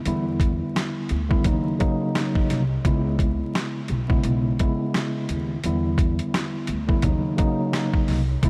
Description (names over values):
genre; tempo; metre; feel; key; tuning
hip hop, boom-bap hip-hop; 86 BPM; 4/4; swing 58% on 16ths; unclear; A4 = 440 Hz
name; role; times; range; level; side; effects
mellow tine electric piano; accompaniment; 0.1-8.5 s; C#3 to E4; -27 LUFS; equal; cassette tape, high-pass filter, low-pass filter
upright bass; bass; 0.1-8.5 s; B1 to E2; -28 LUFS; equal; none
boom bap sampler-style drum kit; drums; 0.1-8.5 s; hi-hat, kick drum, rim click, snare drum; -26 LUFS; equal; none
room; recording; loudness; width
light reverb; vinyl crackle; -23 LUFS; mono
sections
0.0-8.5 A section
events
none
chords
0.1 Em7; 1.5 D#m7; 2.9 C#m7; 5.6 Em7; 7.0 D#m7